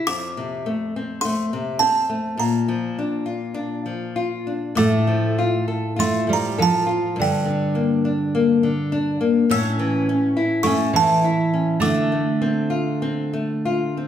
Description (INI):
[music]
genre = fado-style ballad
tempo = 102 BPM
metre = 4/4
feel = uneven beats, rubato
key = D minor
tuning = A4 = 441 Hz
[part]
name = nylon-string guitar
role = accompaniment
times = 0.0-14.1 s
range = F2 to A4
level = -21 LUFS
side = left 3 dB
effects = none
[part]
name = buzzing kalimba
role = melody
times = 0.1-13.9 s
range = G5 to E6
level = -23 LUFS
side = right 3 dB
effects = slapback echo
[part]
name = fingerpicked twelve-string acoustic guitar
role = second line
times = 4.8-13.9 s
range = D3 to C#4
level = -22 LUFS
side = right 3 dB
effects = none
[sound]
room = wet recital hall reverb, RT60 1.4 s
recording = none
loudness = -19 LUFS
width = side -10 dB against mid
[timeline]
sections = 0.0-14.1 A section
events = none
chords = 0.1 F; 2.4 Bb; 4.8 Dm/A; 7.2 Gm; 9.5 A; 11.8 Dm7